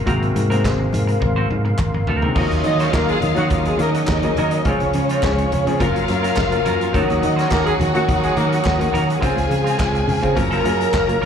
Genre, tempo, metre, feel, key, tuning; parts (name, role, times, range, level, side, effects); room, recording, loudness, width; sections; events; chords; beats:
disco; 105 BPM; 4/4; straight; Eb dorian; A4 = 440 Hz
clear concert grand piano; accompaniment; 0.0-11.3 s; Cb3 to C5; -22 LUFS; left 3 dB; slapback echo
percussive tonewheel organ; sustained chords; 0.0-11.3 s; Ab4 to F6; -26 LUFS; equal; chorus vibrato, slow rotary speaker
semi-hollow electric guitar; accompaniment; 0.1-11.3 s; Ab3 to C5; -29 LUFS; right 3 dB; slapback echo
fingered electric bass; bass; 0.1-11.3 s; Gb1 to Eb3; -22 LUFS; right 1 dB
vintage drum kit; drums; 0.1-11.3 s; crash cymbal, handclaps, hi-hat, kick drum, snare drum, toms; -25 LUFS; right 1 dB
congas; percussion; 0.1-11.3 s; -30 LUFS; left 3 dB
group handclap; percussion; 0.7-11.1 s; -34 LUFS; right 2 dB
warm studio string section; second line; 2.4-11.3 s; Db4 to Bb5; -23 LUFS; right 1 dB; slapback echo
mellow horn section; stabs; 2.6-8.5 s; Gb3 to Eb5; -25 LUFS; right 1 dB; tape echo, slapback echo
small room ambience; live gig heard through the venue's PA, club reverb; -16 LUFS; side -7 dB against mid
0.0-2.4 A section; 2.4-11.3 B section
drum fill 1.2-2.4
0.0 Ab9; 2.4 Ebm7; 4.6 Dbmaj7; 5.8 Gbmaj7; 6.9 Ebm7; 9.2 Dbmaj7; 10.4 Gbmaj7
| 0.07 0.64 1.21 1.79 | 2.36 2.93 3.50 4.07 | 4.64 5.22 5.79 6.36 | 6.93 7.50 8.08 8.65 | 9.22 9.79 10.37 10.94